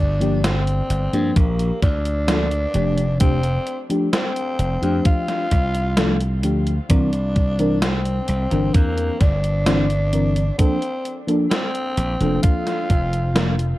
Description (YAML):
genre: vaporwave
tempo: 65 BPM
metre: 4/4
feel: straight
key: unclear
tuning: A4 = 439 Hz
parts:
  - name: growling tenor saxophone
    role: melody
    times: 0.0-13.8 s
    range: Bb3 to F4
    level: -25 LUFS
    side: equal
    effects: vintage 12-bit sampler grit, tape echo
  - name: slap bass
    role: bass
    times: 0.0-13.7 s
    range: F1 to G2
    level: -21 LUFS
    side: equal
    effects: tube saturation
  - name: mellow FM electric piano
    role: accompaniment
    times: 0.2-13.6 s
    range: E3 to C5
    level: -23 LUFS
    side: left 1 dB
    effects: lush chorus, cassette tape
  - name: gated 80s digital drum machine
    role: drums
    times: 0.2-13.8 s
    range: hi-hat, snare drum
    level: -24 LUFS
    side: equal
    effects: gated reverb, gated reverb snare
  - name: electronic kick drum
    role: drums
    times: 1.4-13.1 s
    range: none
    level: -16 LUFS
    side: equal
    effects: none
room: digital ambience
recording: dark, warm production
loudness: -17 LUFS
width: side -17 dB against mid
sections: 0.0-13.8 A section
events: none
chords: 0.0 Gm7; 2.7 F69; 6.9 C9; 10.6 Bbmaj7